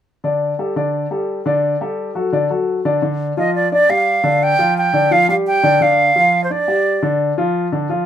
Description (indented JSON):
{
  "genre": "jazz",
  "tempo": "172 BPM",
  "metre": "4/4",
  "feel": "straight",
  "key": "unclear",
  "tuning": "A4 = 440 Hz",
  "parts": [
    { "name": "warm upright piano", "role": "accompaniment", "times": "0.2-8.0 s", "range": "D3 to D5", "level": "-17 LUFS", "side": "left 2 dB", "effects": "none" },
    { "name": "breathy silver concert flute", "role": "melody", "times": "3.4-7.2 s", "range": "C5 to G5", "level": "-14 LUFS", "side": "right 2 dB", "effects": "none" }
  ],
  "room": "moderate studio reverb, RT60 0.5 s",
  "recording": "minimal, uncompressed stereo recording",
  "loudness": "-14 LUFS",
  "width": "side -10 dB against mid",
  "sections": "0.2-3.0 A section; 3.0-8.1 B section",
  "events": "none",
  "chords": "0.2 Dsus4; 2.3 D; 3.0 G5",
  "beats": "| 0.24 0.59 0.94 1.28 | 1.63 1.98 2.33 2.68 | 3.02 3.37 3.72 4.07 | 4.42 4.76 5.11 5.46 | 5.81 6.16 6.50 6.85 | 7.20 7.55 7.89"
}